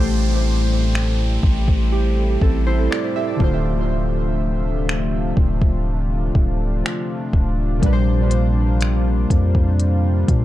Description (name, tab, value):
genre	contemporary R&B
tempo	61 BPM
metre	4/4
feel	straight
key	unclear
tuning	A4 = 440 Hz
part	warm analog keys	accompaniment	0.0-10.4 s	A2 to E5	-23 LUFS	equal	chorus, phaser, tape echo
part	chorused pulse-width pad	sustained chords	0.0-10.4 s	C3 to G4	-26 LUFS	left 1 dB	none
part	long sustained 808-style bass	bass	0.0-10.4 s	D1 to Bb2	-19 LUFS	equal	none
part	downlifter	sound effects	0.0-7.8 s	none	-34 LUFS	right 2 dB	none
part	smooth R&B drum kit	drums	1.0-10.4 s	finger snaps, hi-hat, kick drum	-18 LUFS	equal	vintage 12-bit sampler grit
room	little or no reverb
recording	echo-heavy mix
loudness	-16 LUFS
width	side -14 dB against mid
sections	0.0-10.4 A section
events	none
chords	0.0 Am7; 3.4 Dm7; 7.8 Bb69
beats	0.94 1.92 2.91 | 3.89 4.87 5.86 6.84 | 7.83 8.81 9.79